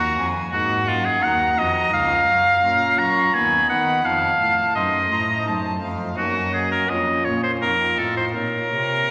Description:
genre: classical, baroque-style sonata movement with continuo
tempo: 85 BPM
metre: 3/4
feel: straight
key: Bb minor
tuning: A4 = 443 Hz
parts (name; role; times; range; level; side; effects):
- bright oboe; melody; 0.0-9.1 s; F4 to Bb5; -21 LUFS; equal; none
- warm violin; second line; 0.0-9.0 s; Db5 to Db6; -31 LUFS; equal; none
- pipe organ, flutes; accompaniment; 0.0-9.1 s; Db2 to D#5; -30 LUFS; equal; none
- rich cello; bass; 0.0-9.1 s; Db2 to Gb3; -32 LUFS; equal; none
room: wet concert hall reverb, RT60 1.9 s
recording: vinyl crackle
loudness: -20 LUFS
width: mono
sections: 0.0-9.1 A section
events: none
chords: 0.0 Ebm; 1.9 Bbm/Db; 3.3 B/D#; 4.0 F7; 6.2 Gb; 6.9 Bbm/F; 7.6 F7; 8.4 Bbm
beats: 0.53 1.23 | 1.93 2.63 3.34 | 4.05 4.76 5.47 | 6.18 6.89 7.62 | 8.35 9.09

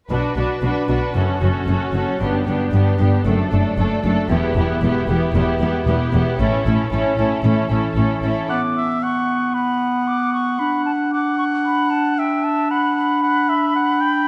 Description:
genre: cinematic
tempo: 114 BPM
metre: 4/4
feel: straight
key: B minor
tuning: A4 = 439 Hz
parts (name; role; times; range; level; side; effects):
- dark symphonic violin section; melody; 0.1-8.5 s; G4 to B4; -31 LUFS; equal; none
- dark symphonic violin section; second line; 0.1-8.5 s; D4 to F#4; -29 LUFS; equal; none
- warm symphonic viola section; accompaniment; 0.1-8.5 s; A3 to D4; -26 LUFS; equal; none
- concert harp; arpeggios; 0.1-8.5 s; E2 to B4; -28 LUFS; equal; none
- rich symphonic cello section; bass; 0.1-8.3 s; E2 to B2; -25 LUFS; equal; none
- rich symphonic double bass section; bass; 0.1-8.3 s; E1 to B1; -24 LUFS; equal; none
- clear clarinet; second line; 8.5-14.3 s; B3 to D4; -23 LUFS; equal; none
- clear oboe; second line; 8.5-14.3 s; E5 to G5; -25 LUFS; equal; none
- concert flute; second line; 8.5-14.3 s; G5 to D6; -24 LUFS; equal; none
room: moderate scoring stage reverb, RT60 1.8 s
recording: none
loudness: -19 LUFS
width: mono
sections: 0.1-8.5 A section; 8.5-14.3 B section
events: build-up 8.5-14.3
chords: 0.1 Bm; 1.2 F#m; 2.2 G; 3.3 D/F#; 4.3 Em; 6.4 A; 8.5 Bm; 10.6 D; 12.7 Bm/D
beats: | 0.10 0.63 1.16 1.68 | 2.21 2.73 3.25 3.78 | 4.30 4.82 5.34 5.87 | 6.39 6.91 7.43 7.96 | 8.49 9.02 9.55 10.07 | 10.60 11.13 11.65 12.18 | 12.71 13.23 13.76

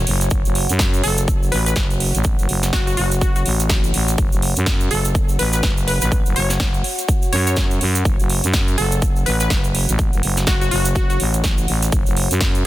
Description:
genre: bass house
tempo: 124 BPM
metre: 4/4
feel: swing 59% on 16ths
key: F# minor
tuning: A4 = 439 Hz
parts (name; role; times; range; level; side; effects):
- growling FM bass; bass; 0.0-12.6 s; F#1 to F#2; -20 LUFS; equal; sidechain pumping
- warbly tape-like pad; texture; 0.0-12.7 s; F#4 to F#5; -29 LUFS; left 1 dB; chorus, built-in reverb, sidechain pumping
- big-room dance drum kit; drums; 0.1-12.6 s; hi-hat, snare drum; -23 LUFS; right 2 dB; none
- tube shaker; percussion; 0.2-12.6 s; none; -29 LUFS; right 4 dB; none
- electronic kick drum; drums; 0.3-12.5 s; none; -19 LUFS; equal; none
- glassy wavetable pluck; melody; 1.0-11.2 s; F#4 to C#5; -26 LUFS; left 2 dB; chorus, cassette tape, tape echo
room: little or no reverb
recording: dense, heavily limited modern master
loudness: -16 LUFS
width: side -15 dB against mid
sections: 0.0-12.7 A section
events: break 0.0-0.3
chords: 0.0 F#5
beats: | 0.31 0.80 1.28 1.76 | 2.25 2.73 3.21 3.70 | 4.18 4.67 5.15 5.63 | 6.12 6.60 7.08 7.57 | 8.05 8.54 9.02 9.50 | 9.99 10.47 10.96 11.44 | 11.92 12.41

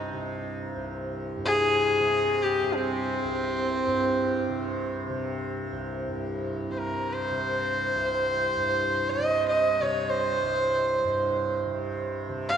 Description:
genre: indian classical, Hindustani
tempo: free time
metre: none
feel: none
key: unclear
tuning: A4 = 440 Hz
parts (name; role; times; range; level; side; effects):
- clear sarangi; melody; 0.0-12.6 s; C4 to F5; -25 LUFS; equal; none
- tanpura; drone; 0.0-12.6 s; C2 to C3; -32 LUFS; right 1 dB; none
room: wet cathedral reverb, RT60 5.2 s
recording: in a vast, echoing space, nothing above 10.5 kHz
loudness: -24 LUFS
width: side -8 dB against mid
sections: 0.0-6.1 A section; 6.1-12.6 A section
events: none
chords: none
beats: free time

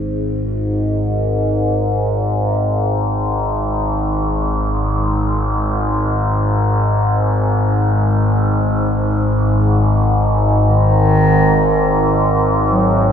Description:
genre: dark ambient drone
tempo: free time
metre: none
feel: none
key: unclear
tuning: A4 = 440 Hz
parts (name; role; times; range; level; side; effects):
- overtone-sweeping drone; drone; 0.0-13.1 s; G#1 to G#2; -14 LUFS; equal; chorus, built-in reverb
- mellow bass clarinet; melody; 10.7-13.1 s; D#3 to F#3; -16 LUFS; equal; tape echo
room: wet cathedral reverb, RT60 4.9 s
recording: small room ambience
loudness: -14 LUFS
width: side -8 dB against mid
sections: 0.0-13.1 A section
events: none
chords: none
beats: free time

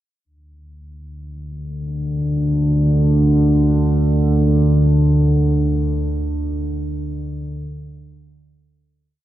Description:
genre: ambient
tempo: free time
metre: none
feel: none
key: unclear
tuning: A4 = 442 Hz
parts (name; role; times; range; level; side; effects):
- analog drone; solo; 1.4-9.2 s; D2 to D3; -16 LUFS; equal; chorus, tape echo
room: wet cathedral reverb, RT60 7.1 s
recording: dark, warm production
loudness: -15 LUFS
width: side -13 dB against mid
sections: 0.2-9.2 A section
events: fade-out 4.9-9.2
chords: none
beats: free time

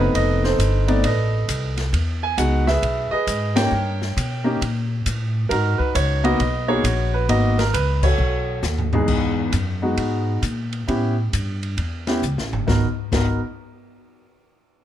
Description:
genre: jazz piano trio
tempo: 134 BPM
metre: 4/4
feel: swing 65% on 8ths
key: G# minor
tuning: A4 = 440 Hz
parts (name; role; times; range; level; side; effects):
- warm concert grand piano; melody; 0.0-13.4 s; E2 to G#5; -22 LUFS; right 1 dB; plate reverb
- upright bass; bass; 0.0-13.4 s; F1 to B2; -22 LUFS; equal; none
- open jazz drum kit; drums; 0.1-13.3 s; crash cymbal, hi-hat, kick drum, ride cymbal, snare drum, toms; -27 LUFS; left 2 dB; none
room: light reverb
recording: none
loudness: -18 LUFS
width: side -11 dB against mid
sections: 0.0-9.1 A section; 9.1-12.7 B section; 12.7-14.5 C section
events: band accent 3.5, 8.0; drum fill 8.6-9.1, 12.2-12.7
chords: 0.1 F7#11; 1.9 Emaj7; 3.7 D#7 (rootless); 5.5 G#m7; 8.2 B13; 9.1 Emaj7; 10.9 A7; 12.7 G#m9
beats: | 0.15 0.59 1.04 1.49 | 1.93 2.38 2.83 3.27 | 3.72 4.17 4.61 5.06 | 5.51 5.95 6.40 6.85 | 7.29 7.74 8.19 8.64 | 9.08 9.53 9.98 10.43 | 10.88 11.32 11.77 12.22 | 12.67 13.12

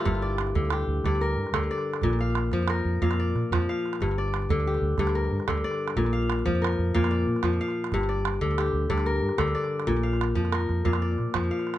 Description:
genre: west african traditional, West African string and xylophone music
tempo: 122 BPM (dotted quarters)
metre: 12/8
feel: straight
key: G dorian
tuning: A4 = 440 Hz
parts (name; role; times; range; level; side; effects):
- kora; arpeggios; 0.0-11.8 s; G2 to F5; -26 LUFS; left 2 dB; slapback echo
- vintage muted fingered electric bass; bass; 0.1-11.5 s; G1 to Bb2; -27 LUFS; right 1 dB; none
- calabash; percussion; 0.1-11.8 s; none; -31 LUFS; right 7 dB; none
room: light reverb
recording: nothing above 10.4 kHz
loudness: -24 LUFS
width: side -13 dB against mid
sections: 0.0-11.8 A section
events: none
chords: 0.1 Gm; 2.0 Bb; 4.0 Gm; 6.0 Bb; 7.9 Gm; 9.9 Bb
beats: | 0.06 0.55 1.04 1.54 | 2.03 2.52 3.02 3.51 | 4.00 4.50 4.99 5.48 | 5.97 6.46 6.95 7.43 | 7.92 8.41 8.90 9.39 | 9.88 10.36 10.85 11.34

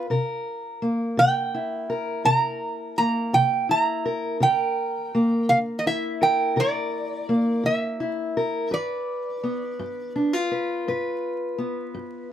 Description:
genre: acoustic country blues, solo or duo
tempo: 56 BPM (dotted quarters)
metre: 12/8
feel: straight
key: unclear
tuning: A4 = 437 Hz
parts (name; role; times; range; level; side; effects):
- fingerpicked steel-string acoustic guitar; accompaniment; 0.0-12.3 s; G2 to B4; -25 LUFS; left 1 dB; none
- metal-body resonator slide guitar; melody; 1.2-10.1 s; D5 to Bb5; -22 LUFS; right 2 dB; none
room: light reverb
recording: close, detailed microphones, vinyl crackle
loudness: -22 LUFS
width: side -10 dB against mid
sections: 0.0-12.3 A section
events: none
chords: 0.1 C7; 4.4 C#dim7; 8.7 G7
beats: | 0.09 1.17 2.25 3.33 | 4.41 5.48 6.56 7.64 | 8.72 9.79 10.87 11.95

